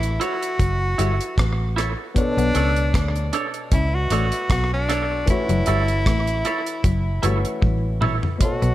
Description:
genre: lovers rock reggae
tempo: 77 BPM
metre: 4/4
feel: swing 54% on 16ths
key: unclear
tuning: A4 = 438 Hz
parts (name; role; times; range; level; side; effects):
- clear tenor saxophone; melody; 0.0-8.7 s; D4 to F#4; -26 LUFS; equal; tape echo
- dark baby grand piano; accompaniment; 0.0-8.7 s; B2 to C#5; -29 LUFS; left 2 dB; slapback echo
- electric guitar at the edge of break-up; riff; 0.0-8.7 s; F#3 to D4; -30 LUFS; left 7 dB; none
- vintage muted fingered electric bass; bass; 0.0-8.7 s; F#1 to D2; -22 LUFS; equal; none
- deep reggae drum kit; drums; 0.0-8.7 s; hi-hat, kick drum, rim click, toms; -22 LUFS; equal; gated reverb
- semi-hollow electric guitar; stabs; 0.2-8.3 s; D4 to C#5; -28 LUFS; right 5 dB; wide subtle chorus, slapback echo
- mellow tonewheel organ; accompaniment; 8.6-8.7 s; B2; -27 LUFS; right 2 dB; none
room: light reverb, small room ambience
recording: none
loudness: -19 LUFS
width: side -14 dB against mid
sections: 0.0-8.7 A section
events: drum fill 7.6-8.4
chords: 0.0 F#m7; 2.2 Bm9; 5.3 F#m7

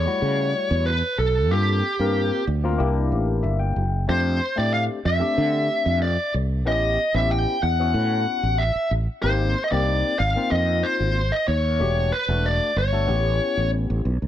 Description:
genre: jazz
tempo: 93 BPM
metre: 4/4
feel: straight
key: unclear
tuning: A4 = 442 Hz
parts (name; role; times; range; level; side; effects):
- bluesy overdriven lead guitar; melody; 0.0-13.7 s; G4 to G5; -23 LUFS; equal; distortion
- fretless electric bass; bass; 0.0-14.3 s; E1 to D3; -22 LUFS; right 1 dB; analog chorus
- barky tine electric piano; accompaniment; 0.1-14.1 s; G3 to G5; -28 LUFS; left 5 dB; phaser
room: little or no reverb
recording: dry, close 1970s-style studio recording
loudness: -20 LUFS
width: side -11 dB against mid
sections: 0.0-14.3 A section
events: tine electric piano fill 3.1-4.1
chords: 0.0 Emadd9; 1.5 Gm11; 2.8 C7; 4.1 F6; 6.7 A9; 9.2 G#maj9; 11.8 Em11; 13.1 A7

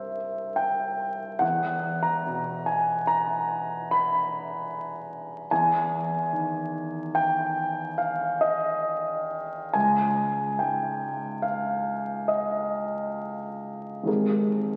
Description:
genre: classical, impressionist solo piano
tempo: 71 BPM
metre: 5/4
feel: uneven beats, rubato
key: unclear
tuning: A4 = 441 Hz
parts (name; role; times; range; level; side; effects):
- warm concert grand piano; solo; 0.0-14.8 s; Ab1 to B5; -27 LUFS; equal; none
room: wet church reverb, RT60 2.9 s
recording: very old 78 rpm record, vinyl crackle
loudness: -27 LUFS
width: mono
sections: 0.0-14.8 A section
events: none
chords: 0.0 C7; 1.4 E5; 5.5 Ab5/Fb; 9.8 Db; 14.1 Abmaj9

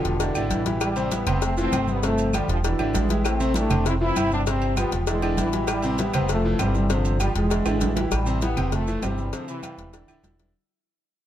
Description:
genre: latin, salsa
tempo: 197 BPM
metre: 4/4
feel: straight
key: A minor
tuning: A4 = 441 Hz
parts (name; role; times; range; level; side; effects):
- brilliant trombone section; melody; 0.0-10.5 s; B2 to E4; -26 LUFS; equal; none
- bright grand piano; accompaniment; 0.0-10.5 s; C3 to F5; -28 LUFS; equal; none
- upright bass; bass; 0.0-10.5 s; D1 to A1; -26 LUFS; equal; none
- congas; percussion; 0.0-10.5 s; none; -31 LUFS; left 1 dB; none
- maracas; percussion; 0.0-10.5 s; none; -40 LUFS; right 5 dB; none
- cowbell; percussion; 0.1-10.5 s; none; -32 LUFS; left 10 dB; none
- agogo bells and timbales; percussion; 0.2-10.4 s; none; -33 LUFS; right 6 dB; none
- claves; percussion; 0.4-10.2 s; none; -39 LUFS; left 4 dB; none
room: light reverb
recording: none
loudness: -21 LUFS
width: side -11 dB against mid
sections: 0.0-8.1 A section; 8.1-10.5 B section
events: drum fill 7.7-8.1; fade-out 8.1-10.5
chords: 0.2 E7; 0.8 Fmaj7; 2.0 G7sus4; 2.6 E7; 3.2 Am7; 3.9 F5; 4.5 G7sus4; 5.1 E7; 5.7 Am7; 6.3 Fmaj7; 6.9 G7sus4; 7.5 E7; 8.1 Am7; 8.7 Fmaj7; 9.3 G7sus4; 9.9 E5

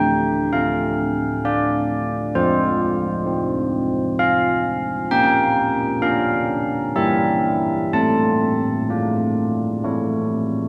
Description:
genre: classical, tune for church bells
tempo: 65 BPM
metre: 3/4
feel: straight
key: D minor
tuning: A4 = 440 Hz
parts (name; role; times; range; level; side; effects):
- carillon bells; solo; 0.0-10.7 s; D3 to A5; -20 LUFS; equal; none
room: wet church reverb, RT60 3.2 s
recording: recorded in a church or concert hall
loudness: -20 LUFS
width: mono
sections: 0.0-10.7 A section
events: none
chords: 0.0 Dm; 2.4 F5; 5.1 Bb; 6.9 Edim/G; 7.9 Dm/A; 9.8 A

